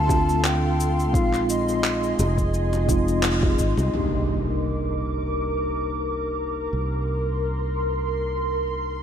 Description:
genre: sunset chillout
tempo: 86 BPM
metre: 4/4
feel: swing 55% on 16ths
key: unclear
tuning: A4 = 436 Hz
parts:
  - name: mellow hollow concert flute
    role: melody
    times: 0.0-2.5 s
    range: Eb5 to A5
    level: -28 LUFS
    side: left 2 dB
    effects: ping-pong delay
  - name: mellow tine electric piano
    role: accompaniment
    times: 0.0-9.0 s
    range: Ab3 to G4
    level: -27 LUFS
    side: equal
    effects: slow stereo tremolo, auto-pan, vintage 12-bit sampler grit, ping-pong delay
  - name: ethereal airy pad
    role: sustained chords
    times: 0.0-9.0 s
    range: Ab4 to D6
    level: -28 LUFS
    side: equal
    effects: ensemble chorus, built-in reverb
  - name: fretless electric bass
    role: bass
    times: 0.0-9.0 s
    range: F1 to D2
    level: -26 LUFS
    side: equal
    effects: none
  - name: electronic cabasa and handclaps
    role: drums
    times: 0.1-3.9 s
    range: none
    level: -29 LUFS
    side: equal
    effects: overdrive
  - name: electronic kick drum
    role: drums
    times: 0.1-3.7 s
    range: none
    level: -24 LUFS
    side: equal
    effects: overdrive
  - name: bongos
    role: percussion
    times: 0.1-3.9 s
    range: none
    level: -34 LUFS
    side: left 4 dB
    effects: none
  - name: impact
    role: sound effects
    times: 3.9-6.7 s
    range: none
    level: -32 LUFS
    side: equal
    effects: none
room: light reverb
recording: none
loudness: -21 LUFS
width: side -9 dB against mid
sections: 0.0-3.9 A section; 3.9-9.0 B section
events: filter sweep on tine electric piano 0.0-3.9; band accent 3.2-3.6; impact 3.9-6.7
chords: 0.0 G9sus4; 1.1 Bb9sus4; 3.9 Cm9

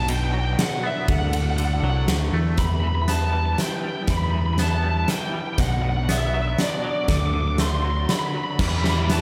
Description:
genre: post-rock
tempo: 120 BPM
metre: 3/4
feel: straight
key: E minor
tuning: A4 = 440 Hz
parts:
  - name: lead guitar through a small cranked amp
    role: melody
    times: 0.0-9.2 s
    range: D5 to D6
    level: -30 LUFS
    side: equal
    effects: overdrive, slapback echo
  - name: rich studio string section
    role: sustained chords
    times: 0.0-9.2 s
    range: F#3 to E5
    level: -39 LUFS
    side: equal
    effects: none
  - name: twangy electric guitar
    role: arpeggios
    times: 0.0-9.2 s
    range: B2 to B3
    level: -33 LUFS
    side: equal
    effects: tremolo, slapback echo
  - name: overdriven picked electric bass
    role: bass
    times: 0.0-9.2 s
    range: B1 to E2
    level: -25 LUFS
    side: equal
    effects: none
  - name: big rock drum kit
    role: drums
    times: 0.1-9.2 s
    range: crash cymbal, hi-hat, kick drum, ride cymbal, snare drum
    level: -28 LUFS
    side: equal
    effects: none
  - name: overdriven electric guitar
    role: riff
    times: 8.6-9.2 s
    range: E3 to G3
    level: -31 LUFS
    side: equal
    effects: slapback echo
room: light reverb, studio ambience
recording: none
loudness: -23 LUFS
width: mono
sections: 0.0-2.6 A section; 2.6-9.2 B section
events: build-up 2.6-9.2; drum fill 2.6-9.2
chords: 0.0 Bm; 1.1 D; 2.6 Em; 5.6 Bm; 7.1 D; 8.6 Em

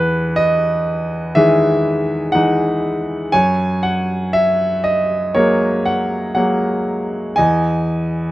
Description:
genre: classical, lyrical solo piano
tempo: 60 BPM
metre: 4/4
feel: rubato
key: E lydian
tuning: A4 = 440 Hz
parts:
  - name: bright concert grand piano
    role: solo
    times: 0.0-8.3 s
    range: E2 to G#5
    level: -14 LUFS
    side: equal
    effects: none
room: light reverb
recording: close, detailed microphones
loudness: -14 LUFS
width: side -16 dB against mid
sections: 0.0-8.3 A section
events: none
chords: 0.0 Emaj7; 3.3 F#add9; 7.4 Emaj7

